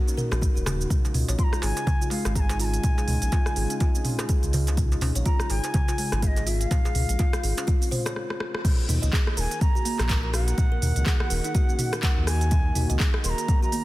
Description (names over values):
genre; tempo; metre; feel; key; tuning
afro house; 124 BPM; 4/4; swing 58% on 16ths; Eb minor; A4 = 442 Hz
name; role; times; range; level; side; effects
warm analog pad; sustained chords; 0.0-13.8 s; Db3 to Eb5; -36 LUFS; equal; chorus, sidechain pumping
kalimba; arpeggios; 0.0-13.8 s; Ab3 to Eb5; -33 LUFS; left 1 dB; sidechain pumping, dub echo
afro-pop drum kit; drums; 0.1-13.8 s; crash cymbal, handclaps, hi-hat, rim click, shaker, toms; -30 LUFS; right 1 dB; studio ambience
round analog bass; bass; 0.3-13.3 s; Eb1 to Eb2; -25 LUFS; equal; sidechain pumping
darbuka; percussion; 0.3-8.1 s; none; -33 LUFS; right 1 dB; none
electronic kick drum; drums; 0.4-13.6 s; none; -23 LUFS; equal; overdrive, studio ambience
bright reedy bansuri; melody; 1.4-13.8 s; Eb5 to C6; -33 LUFS; right 1 dB; dub echo
room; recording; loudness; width
digital ambience; dense, heavily limited modern master; -22 LUFS; side -17 dB against mid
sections
0.0-8.6 A section; 8.6-13.8 B section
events
drum fill 8.2-8.6; stop 8.2-8.6; band accent 8.5; drop 8.6-13.8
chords
0.0 Ebm; 0.9 Db; 8.6 Ebm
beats
0.42 | 0.90 1.39 1.87 2.36 | 2.84 3.32 3.81 4.29 | 4.78 5.26 5.74 6.23 | 6.71 7.19 7.68 8.16 | 8.65 9.13 9.61 10.10 | 10.58 11.06 11.55 12.03 | 12.52 13.00 13.48